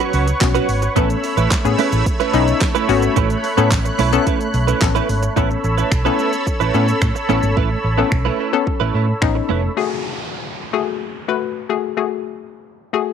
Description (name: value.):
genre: dance-pop.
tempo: 109 BPM.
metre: 4/4.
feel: straight.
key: unclear.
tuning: A4 = 442 Hz.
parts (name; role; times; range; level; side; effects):
hollow square pluck; accompaniment; 0.0-13.1 s; A3 to B4; -21 LUFS; left 11 dB; chorus, sidechain pumping.
filtered supersaw swell; sustained chords; 0.0-9.7 s; A3 to E6; -23 LUFS; right 1 dB; sidechain pumping.
direct-recorded clean electric guitar; riff; 0.0-9.7 s; F#3 to B4; -21 LUFS; right 14 dB; ensemble chorus.
pop drum kit; drums; 0.0-9.3 s; finger snaps, handclaps, hi-hat, kick drum, shaker, snare drum; -20 LUFS; right 1 dB; none.
vintage muted fingered electric bass; bass; 0.1-9.7 s; F1 to A2; -19 LUFS; right 1 dB; sidechain pumping.
tambourine; percussion; 0.4-4.9 s; none; barely audible; none; none.
downlifter; sound effects; 9.8-13.1 s; none; -31 LUFS; equal; none.
room: digital ambience.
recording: 1960s-style stereo with parts hard left and right.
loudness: -15 LUFS.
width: side -8 dB against mid.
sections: 0.0-5.4 A section; 5.4-9.8 B section; 9.8-13.1 C section.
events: none.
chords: 0.0 Bsus2; 1.0 Aadd9; 9.8 F#madd9.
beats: 0.41 | 0.96 1.51 2.06 2.61 | 3.16 3.71 4.26 4.82 | 5.37 5.92 6.47 7.02 | 7.57 8.12 8.67 9.22 | 9.77 10.32 10.87 11.42 | 11.97 12.52 13.07.